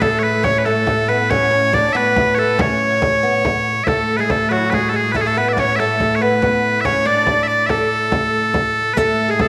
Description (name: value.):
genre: medieval dance.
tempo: 94 BPM (dotted quarters).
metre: 6/8.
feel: straight.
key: A major.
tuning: A4 = 439 Hz.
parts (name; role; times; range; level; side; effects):
loud bright bagpipes; melody; 0.0-9.5 s; F#4 to E5; -20 LUFS; equal; none.
breathy bright tenor recorder; second line; 0.0-9.5 s; E4 to D5; -25 LUFS; equal; none.
oud; second line; 0.0-9.5 s; F#3 to D4; -25 LUFS; equal; none.
warm viola da gamba; drone; 0.0-9.5 s; A2; -27 LUFS; equal; none.
frame drum; percussion; 0.0-9.5 s; none; -26 LUFS; equal; none.
riq; percussion; 9.0-9.2 s; none; -31 LUFS; equal; none.
room: wet echo chamber reverb, RT60 2.5 s.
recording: none.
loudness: -17 LUFS.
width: mono.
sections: 0.0-9.0 A section.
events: none.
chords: none.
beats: | 0.02 0.66 | 1.30 1.95 | 2.59 3.23 | 3.87 4.51 | 5.15 5.79 | 6.42 7.06 | 7.70 8.34 | 8.97.